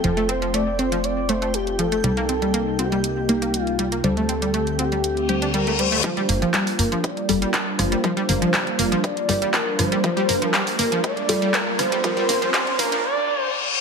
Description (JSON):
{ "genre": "progressive house", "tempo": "120 BPM", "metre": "4/4", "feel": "straight", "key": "G minor", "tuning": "A4 = 439 Hz", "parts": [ { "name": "expressive portamento lead", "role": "melody", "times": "0.0-13.5 s", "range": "G4 to D5", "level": "-25 LUFS", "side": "left 1 dB", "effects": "wide subtle chorus, sidechain pumping, ping-pong delay" }, { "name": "warm analog pad", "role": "sustained chords", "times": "0.0-13.0 s", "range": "C3 to G4", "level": "-28 LUFS", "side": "right 1 dB", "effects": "chorus, sidechain pumping" }, { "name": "wide unison pluck", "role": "arpeggios", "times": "0.0-13.0 s", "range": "F3 to G4", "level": "-25 LUFS", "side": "equal", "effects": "cassette tape, sidechain pumping, ping-pong delay" }, { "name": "deep mellow chord stab", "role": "stabs", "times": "0.0-13.0 s", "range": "G3 to C5", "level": "-27 LUFS", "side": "left 1 dB", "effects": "chorus, sidechain pumping, ping-pong delay" }, { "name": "plucky analog bass", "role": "bass", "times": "0.0-12.9 s", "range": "F1 to D2", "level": "-28 LUFS", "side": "equal", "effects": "sidechain pumping" }, { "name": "house drum kit", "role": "drums", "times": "0.0-13.0 s", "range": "handclaps, hi-hat, rim click", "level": "-24 LUFS", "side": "right 1 dB", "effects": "overdrive, high-pass filter on hats, high-pass filter on snare, high-pass filter on room" }, { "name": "backwards swelling texture", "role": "texture", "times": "0.0-6.1 s", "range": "G5", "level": "-38 LUFS", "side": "right 3 dB", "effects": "built-in reverb, sidechain pumping" }, { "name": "reverse cymbal and riser", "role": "sound effects", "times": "5.2-13.8 s", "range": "none", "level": "-28 LUFS", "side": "left 2 dB", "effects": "none" }, { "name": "electronic kick drum", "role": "drums", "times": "6.0-12.6 s", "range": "none", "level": "-30 LUFS", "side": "equal", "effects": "none" } ], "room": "moderate lush hall reverb, RT60 1.7 s, digital ambience", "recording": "high-pass filter", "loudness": "-19 LUFS", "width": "side -5 dB against mid", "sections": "0.0-6.0 A section; 6.0-13.8 B section", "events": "reverse cymbal 5.2-6.0, 13.0-13.8; build-up 6.0-13.8; riser 6.0-13.0; filter sweep on synth stab 6.0-13.8; filter sweep on analog synth lead 6.0-13.8; break 13.0-13.8", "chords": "0.0 F; 2.0 Cm7; 4.0 D7sus4; 6.0 Gm7", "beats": "| 0.04 0.54 1.04 1.54 | 2.04 2.54 3.04 3.54 | 4.04 4.54 5.04 5.54 | 6.04 6.54 7.04 7.54 | 8.04 8.54 9.04 9.54 | 10.04 10.54 11.04 11.54 | 12.04 12.54 13.04 13.54" }